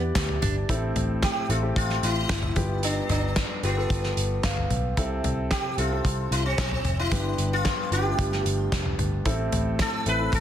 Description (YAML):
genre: piano-driven pop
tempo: 112 BPM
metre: 4/4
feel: straight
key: A minor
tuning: A4 = 441 Hz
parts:
  - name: sitar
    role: melody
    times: 0.0-10.4 s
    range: B3 to B4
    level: -29 LUFS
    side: equal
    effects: digital delay
  - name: clear concert grand piano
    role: accompaniment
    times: 0.0-10.4 s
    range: G2 to F5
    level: -30 LUFS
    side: left 1 dB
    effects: none
  - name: vintage muted picked electric bass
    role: bass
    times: 0.0-10.4 s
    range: F1 to E2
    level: -28 LUFS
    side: equal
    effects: none
  - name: loose indie drum kit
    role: drums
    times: 0.2-10.4 s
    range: handclaps, hi-hat, kick drum, snare drum, toms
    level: -28 LUFS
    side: equal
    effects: none
  - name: group handclap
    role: percussion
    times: 0.2-0.3, 9.8-10.4 s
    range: none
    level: -43 LUFS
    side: right 2 dB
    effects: none
  - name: picked steel-string acoustic guitar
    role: riff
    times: 0.4-0.5 s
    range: D4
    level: -35 LUFS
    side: right 7 dB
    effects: none
room: studio reverb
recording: dense, heavily limited modern master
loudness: -23 LUFS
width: side -10 dB against mid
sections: 0.7-10.4 A section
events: grand piano fill 4.2-5.0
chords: 0.0 Em; 0.7 Am; 2.6 G7; 5.0 C6; 7.1 G; 9.3 Am